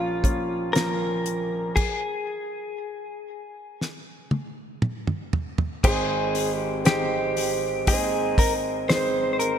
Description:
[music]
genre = pop ballad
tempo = 59 BPM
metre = 4/4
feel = straight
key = Ab major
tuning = A4 = 440 Hz
[part]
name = direct-recorded clean electric guitar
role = melody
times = 0.0-9.6 s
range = F4 to C5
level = -27 LUFS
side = left 3 dB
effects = ping-pong delay
[part]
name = clear concert grand piano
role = accompaniment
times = 0.0-9.6 s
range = Ab1 to Eb5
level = -26 LUFS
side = right 3 dB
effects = none
[part]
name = damped 70s drum kit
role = drums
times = 0.2-9.6 s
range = crash cymbal, hi-hat, kick drum, snare drum, toms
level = -25 LUFS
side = equal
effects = none
[sound]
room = moderate lush hall reverb, RT60 2.7 s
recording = bright 1980s-style digital production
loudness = -22 LUFS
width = side -8 dB against mid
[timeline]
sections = 0.0-5.8 A section; 5.8-9.6 B section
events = stop 1.8-5.8; drum fill 3.8-5.8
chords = 0.0 Bbm; 1.8 N.C.; 5.8 Ab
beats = 0.75 | 1.77 2.79 3.81 4.82 | 5.84 6.86 7.87 8.89

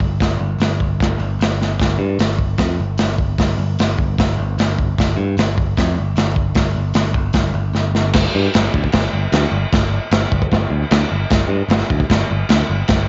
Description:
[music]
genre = garage rock duo or trio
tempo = 151 BPM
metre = 4/4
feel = straight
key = unclear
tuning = A4 = 442 Hz
[part]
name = modern bright picked electric bass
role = bass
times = 0.0-13.1 s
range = G1 to G2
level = -21 LUFS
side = equal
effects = none
[part]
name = crunchy breakbeat drum kit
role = drums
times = 0.0-13.0 s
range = crash cymbal, hi-hat, kick drum, snare drum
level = -20 LUFS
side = equal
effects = none
[sound]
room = light reverb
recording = home recording on cassette, nothing above 7.6 kHz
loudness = -17 LUFS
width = mono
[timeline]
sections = 0.0-8.1 A section; 8.1-13.1 B section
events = drum fill 1.6, 7.7-8.1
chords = none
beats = | 0.20 0.59 0.99 1.39 | 1.79 2.19 2.58 2.98 | 3.38 3.78 4.17 4.57 | 4.97 5.37 5.76 6.16 | 6.56 6.95 7.35 7.75 | 8.14 8.54 8.93 9.33 | 9.72 10.12 10.51 10.91 | 11.30 11.70 12.09 12.49 | 12.88

